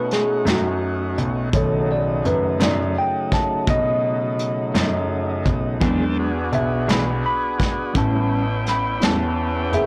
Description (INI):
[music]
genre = slow blues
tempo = 56 BPM (dotted quarters)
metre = 12/8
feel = straight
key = unclear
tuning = A4 = 440 Hz
[part]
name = mellow tine electric piano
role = accompaniment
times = 0.0-9.9 s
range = D#3 to B5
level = -26 LUFS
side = equal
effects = lush chorus
[part]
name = tonewheel organ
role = sustained chords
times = 0.0-9.9 s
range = C#3 to A5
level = -28 LUFS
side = equal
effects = slow rotary speaker, overdrive
[part]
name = warm concert grand piano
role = bass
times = 0.0-9.9 s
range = F#1 to B2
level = -26 LUFS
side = equal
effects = transformer saturation
[part]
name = vintage brush drum kit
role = drums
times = 0.1-9.9 s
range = hi-hat, kick drum, snare drum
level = -25 LUFS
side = equal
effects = none
[part]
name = mellow electric guitar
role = accompaniment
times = 0.5-9.2 s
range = A2 to G#4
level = -28 LUFS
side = equal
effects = tremolo
[sound]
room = light reverb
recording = blown-out, overdriven recording, overdrive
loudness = -21 LUFS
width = mono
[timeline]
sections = 0.0-9.9 A section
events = tine electric piano solo 0.0-9.9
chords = 0.0 B7; 5.8 E7; 8.0 A7